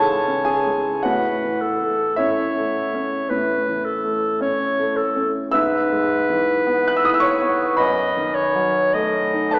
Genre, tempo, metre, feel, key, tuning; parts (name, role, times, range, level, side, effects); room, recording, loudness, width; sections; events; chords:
classical, romantic duo for clarinet and grand piano; 53 BPM; 4/4; rubato; A4 = 440 Hz
warm clarinet; melody; 0.0-9.6 s; A4 to D#5; -21 LUFS; equal
warm grand piano; accompaniment; 0.0-9.6 s; C#2 to F#6; -20 LUFS; equal
wet recital hall reverb, RT60 1.7 s; recorded in a church or concert hall, small speaker sound; -17 LUFS; side -28 dB against mid
0.0-9.6 A section
0.0 C#m; 1.0 A; 5.5 E/G#; 7.8 D#dim/F#